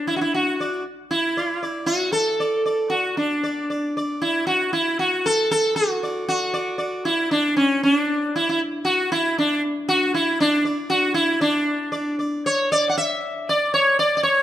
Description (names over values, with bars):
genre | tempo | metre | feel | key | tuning
indian classical | 116 BPM | 4/4 | straight | D raga hamsadhwani | A4 = 440 Hz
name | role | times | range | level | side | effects
sitar | solo | 0.0-14.4 s | C#4 to F#5 | -19 LUFS | equal | none
room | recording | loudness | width
light reverb | minimal, uncompressed stereo recording | -19 LUFS | side -12 dB against mid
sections
0.0-11.4 A section; 11.4-14.4 B section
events
none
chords
none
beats
0.06 0.58 | 1.10 1.62 2.14 2.65 | 3.17 3.69 4.21 4.72 | 5.24 5.75 6.27 6.79 | 7.30 7.82 8.33 8.85 | 9.36 9.87 10.39 10.90 | 11.41 11.93 12.44 12.95 | 13.46 13.97